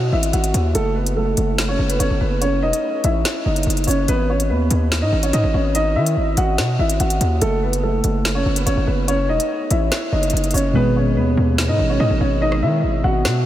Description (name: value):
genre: hip hop, drill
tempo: 144 BPM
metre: 4/4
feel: half-time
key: G# phrygian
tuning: A4 = 442 Hz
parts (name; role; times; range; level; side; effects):
- dark concert grand piano; melody; 0.0-13.4 s; A3 to F#5; -20 LUFS; equal; tape echo
- distorted 808-style bass; bass; 0.0-13.4 s; E1 to D#3; -19 LUFS; equal; distortion
- drill drum kit; drums; 0.2-13.3 s; hi-hat, rim click, snare drum; -26 LUFS; equal; none
- muted felt-like synth keys; accompaniment; 10.7-13.5 s; B2 to G#4; -21 LUFS; equal; chorus
room: moderate huge ambient reverb, RT60 8.0 s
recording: dreamy mix soaked in reverb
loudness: -16 LUFS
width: side -12 dB against mid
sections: 0.0-13.5 A section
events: hi-hats muted 10.8-13.5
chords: 0.0 G#m; 0.8 F#m; 4.1 G#m; 7.4 F#m; 10.8 G#m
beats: 0.33 | 0.75 1.17 1.58 2.00 | 2.42 2.83 3.25 3.67 | 4.08 4.50 4.92 5.33 | 5.75 6.17 6.58 7.00 | 7.42 7.83 8.25 8.67 | 9.08 9.50 9.92 10.33 | 10.75 11.17 11.58 12.00 | 12.42 12.83 13.25